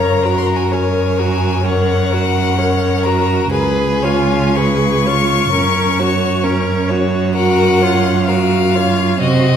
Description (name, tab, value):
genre	classical, slow romantic movement for string quartet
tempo	65 BPM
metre	4/4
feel	rubato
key	unclear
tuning	A4 = 440 Hz
part	bright violin	melody	0.0-9.6 s	Eb5 to Db6	-20 LUFS	left 7 dB	none
part	rich violin	second line	0.0-9.6 s	Gb4 to Db5	-21 LUFS	left 3 dB	none
part	rich viola	accompaniment	0.0-9.6 s	C4 to Bb4	-18 LUFS	equal	none
part	clear cello	bass	0.0-9.6 s	Db2 to C3	-16 LUFS	right 3 dB	none
room	wet recital hall reverb, RT60 1.5 s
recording	heard from further back in the room, lossy compression artefacts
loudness	-12 LUFS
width	side -8 dB against mid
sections	0.0-9.6 A section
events	none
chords	0.0 Gb; 3.5 Db7; 5.5 Gb; 7.4 Gbmaj7